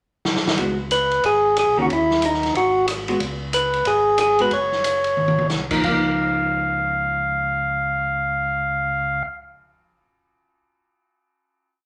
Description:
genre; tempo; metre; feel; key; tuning
soul jazz organ trio; 183 BPM; 4/4; swing 63% on 8ths; Db mixolydian; A4 = 441 Hz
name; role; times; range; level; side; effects
swinging big-band drum kit; drums; 0.2-5.9 s; crash cymbal, hi-hat, kick drum, ride cymbal, rim click, snare drum, toms; -28 LUFS; equal; none
hollow-body jazz guitar; accompaniment; 0.6-10.0 s; Eb3 to Gb4; -27 LUFS; equal; none
mellow tonewheel organ; bass; 0.6-9.2 s; Gb1 to Eb2; -34 LUFS; equal; slow rotary speaker
percussive tonewheel organ; melody; 0.9-9.2 s; Eb4 to F5; -21 LUFS; equal; overdrive, stopped rotary speaker
room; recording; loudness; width
moderate large studio reverb, RT60 0.9 s; none; -20 LUFS; mono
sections
0.0-0.6 pickup bar; 0.6-5.8 A section; 5.8-8.5 final chord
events
drum fill 0.3-0.6, 5.2-5.5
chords
0.0 N.C.; 0.6 Db7sus4; 1.9 N.C.; 2.5 Abm7; 3.2 Db7sus4; 5.8 Db69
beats
0.25 | 0.58 0.91 1.23 1.56 | 1.89 2.22 2.55 2.88 | 3.20 3.53 3.86 4.19 | 4.52 4.85 5.18 5.51 | 5.83 6.16 6.49 6.82 | 7.15 7.48 7.81 8.13

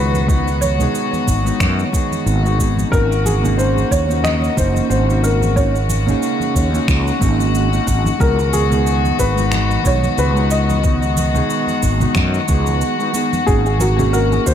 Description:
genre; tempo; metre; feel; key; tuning
sunset chillout; 91 BPM; 4/4; swing 56% on 16ths; unclear; A4 = 440 Hz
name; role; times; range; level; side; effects
dark baby grand piano; melody; 0.0-14.5 s; Gb4 to Eb5; -22 LUFS; equal; tape echo
mellow electric guitar; accompaniment; 0.0-14.5 s; Ab3 to Ab4; -22 LUFS; moving between left 4 dB and right 4 dB; auto-pan, low-pass filter, tape echo
warm chamber string section; sustained chords; 0.0-14.5 s; Db3 to Gb4; -22 LUFS; left 4 dB; none
fretless electric bass; bass; 0.0-14.5 s; Gb1 to Gb2; -18 LUFS; equal; none
electronic cabasa and finger snaps; drums; 0.1-14.5 s; none; -27 LUFS; right 2 dB; dub echo
congas; percussion; 0.1-14.4 s; none; -27 LUFS; right 1 dB; none
electronic kick drum; drums; 0.3-14.5 s; none; -19 LUFS; equal; none
soft round pluck; arpeggios; 13.5-14.5 s; Gb4 to Bb4; -26 LUFS; left 1 dB; chorus, tape echo
room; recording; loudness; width
light reverb; echo-heavy mix; -14 LUFS; side -9 dB against mid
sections
0.0-14.5 A section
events
break 12.8-13.5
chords
0.0 Db9sus4; 2.9 Ab9sus4; 8.2 Db9sus4; 13.5 Ab9sus4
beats
| 0.29 0.95 1.61 2.27 | 2.93 3.58 4.25 4.90 | 5.56 6.22 6.88 7.54 | 8.20 8.86 9.52 10.18 | 10.84 11.50 12.16 12.82 | 13.47 14.13

